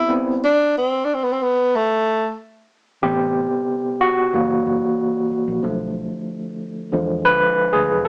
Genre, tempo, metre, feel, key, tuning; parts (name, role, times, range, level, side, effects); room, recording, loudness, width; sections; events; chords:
soul; 92 BPM; 4/4; straight; A4 = 441 Hz
breathy tenor saxophone; melody; 0.0-2.4 s; A3 to E4; -20 LUFS; equal
overdriven tine electric piano; accompaniment; 0.0-8.1 s; C3 to B4; -20 LUFS; equal; fast tremolo
vintage muted fingered electric bass; bass; 3.0-8.1 s; E1 to E2; -32 LUFS; equal
light reverb; band playing live in one room, small speaker sound; -20 LUFS; mono
0.0-3.0 A section; 3.0-8.1 B section
tine electric piano solo 3.0-8.1
0.0 Am9; 4.3 F#7b9; 5.6 Bm7b5; 6.9 E7b9